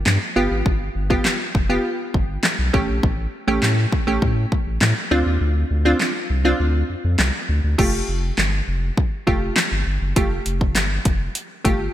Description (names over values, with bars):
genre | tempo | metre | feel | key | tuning
dance-pop | 101 BPM | 4/4 | straight | unclear | A4 = 441 Hz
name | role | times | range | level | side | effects
saturated sub bass | bass | 0.0-11.9 s | F1 to A2 | -21 LUFS | equal | sidechain pumping
pop drum kit | drums | 0.1-11.8 s | crash cymbal, handclaps, hi-hat, kick drum, snare drum | -21 LUFS | equal | overdrive, gated reverb
wavetable chord stab | accompaniment | 0.4-11.9 s | A3 to G4 | -23 LUFS | right 1 dB | sidechain pumping
room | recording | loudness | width
light reverb, digital ambience | bright 1980s-style digital production | -18 LUFS | side -12 dB against mid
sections
0.0-7.8 A section; 7.8-11.9 B section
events
kick muted 5.4-7.8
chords
0.4 G7; 2.7 A7; 5.1 Dm7; 7.8 Fadd9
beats
0.07 | 0.66 1.25 1.85 2.44 | 3.04 3.63 4.22 4.82 | 5.41 6.00 6.60 7.19 | 7.79 8.38 8.97 9.57 | 10.16 10.76 11.35